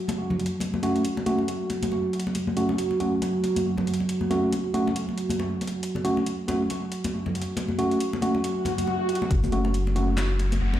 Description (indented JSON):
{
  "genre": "deep dubstep",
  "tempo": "138 BPM",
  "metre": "4/4",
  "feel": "swing 59% on 16ths, half-time",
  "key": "F# minor",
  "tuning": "A4 = 440 Hz",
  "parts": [
    { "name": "deep dark ambient pad", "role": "sustained chords", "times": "0.0-10.8 s", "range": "F#4", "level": "-29 LUFS", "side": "right 2 dB", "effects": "chorus, built-in reverb, vintage 12-bit sampler grit" },
    { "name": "deep house drum kit", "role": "drums", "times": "0.1-10.6 s", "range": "handclaps, hi-hat, shaker, snare drum", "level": "-37 LUFS", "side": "equal", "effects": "high-pass filter on hats, high-pass filter on perc, high-pass filter on snare" },
    { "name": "congas", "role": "percussion", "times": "0.1-10.8 s", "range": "none", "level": "-30 LUFS", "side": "left 2 dB", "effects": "dub echo" },
    { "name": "tine electric piano", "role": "stabs", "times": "0.8-10.1 s", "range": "A3 to F#4", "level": "-27 LUFS", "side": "right 1 dB", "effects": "overdrive, low-pass filter, dub echo" },
    { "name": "swell and riser", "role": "sound effects", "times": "8.6-10.8 s", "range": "none", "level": "-32 LUFS", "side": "left 1 dB", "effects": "none" },
    { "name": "saturated sub bass", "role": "bass", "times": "9.3-10.8 s", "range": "F#1", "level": "-24 LUFS", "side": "equal", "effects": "none" },
    { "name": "electronic kick drum", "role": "drums", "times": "9.3-9.4 s", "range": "none", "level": "-24 LUFS", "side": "equal", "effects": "none" }
  ],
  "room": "wet digital room reverb, RT60 1.1 s",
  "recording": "played on a big sound system in a bare room, large studio reverb",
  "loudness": "-23 LUFS",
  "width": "side -12 dB against mid",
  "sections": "0.0-9.3 A section; 9.3-10.8 B section",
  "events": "swell 8.6-9.3; build-up 9.3-10.8; riser 9.3-10.8",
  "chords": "0.0 F#m"
}